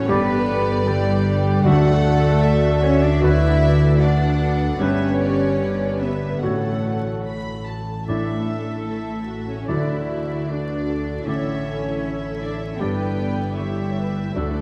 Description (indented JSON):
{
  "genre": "cinematic",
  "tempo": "76 BPM",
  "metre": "4/4",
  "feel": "rubato",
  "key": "unclear",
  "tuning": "A4 = 440 Hz",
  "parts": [
    { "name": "warm symphonic violin section", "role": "melody", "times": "0.0-14.6 s", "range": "D5 to B5", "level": "-34 LUFS", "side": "equal", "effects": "none" },
    { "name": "warm symphonic violin section", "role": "second line", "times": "0.0-14.6 s", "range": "G4 to E5", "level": "-34 LUFS", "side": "equal", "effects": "none" },
    { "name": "clear concert grand piano", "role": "accompaniment", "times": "0.0-14.6 s", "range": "D2 to E5", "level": "-29 LUFS", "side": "equal", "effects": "none" },
    { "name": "dark symphonic viola section", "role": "accompaniment", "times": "0.0-14.6 s", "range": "D4 to D5", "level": "-34 LUFS", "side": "equal", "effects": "none" },
    { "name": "dark French horn section", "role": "sustained chords", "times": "0.0-14.6 s", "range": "E4 to D5", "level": "-31 LUFS", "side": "equal", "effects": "none" },
    { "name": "concert harp", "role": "arpeggios", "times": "0.0-14.6 s", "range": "G2 to E4", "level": "-29 LUFS", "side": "equal", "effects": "none" },
    { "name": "warm symphonic cello section", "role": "bass", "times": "0.0-14.6 s", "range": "G3 to E4", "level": "-28 LUFS", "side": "equal", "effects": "none" },
    { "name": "warm symphonic double bass section", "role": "bass", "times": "0.0-14.6 s", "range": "G1 to D2", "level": "-27 LUFS", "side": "equal", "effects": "none" },
    { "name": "mellow clarinet", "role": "second line", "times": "0.1-14.6 s", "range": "E4 to G4", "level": "-33 LUFS", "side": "equal", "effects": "none" },
    { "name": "small flute group", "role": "second line", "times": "0.1-14.6 s", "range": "G4 to E5", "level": "-34 LUFS", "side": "equal", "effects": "none" },
    { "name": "warm oboe", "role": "second line", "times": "0.1-14.6 s", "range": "B4 to E5", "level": "-37 LUFS", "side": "equal", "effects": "none" },
    { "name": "timpani", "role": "percussion", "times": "1.6-14.6 s", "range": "A2 to D3", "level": "-30 LUFS", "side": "equal", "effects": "none" }
  ],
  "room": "wet scoring stage reverb, RT60 2.0 s",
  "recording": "dark, warm production, vinyl crackle",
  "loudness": "-21 LUFS",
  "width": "mono",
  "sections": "0.0-14.6 A section",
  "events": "none",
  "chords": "0.1 G; 1.6 Dadd9; 3.2 Bm/D; 4.8 G; 6.4 F#m/A; 8.1 Asus4; 9.7 Dadd9; 11.3 Asus4; 12.8 G"
}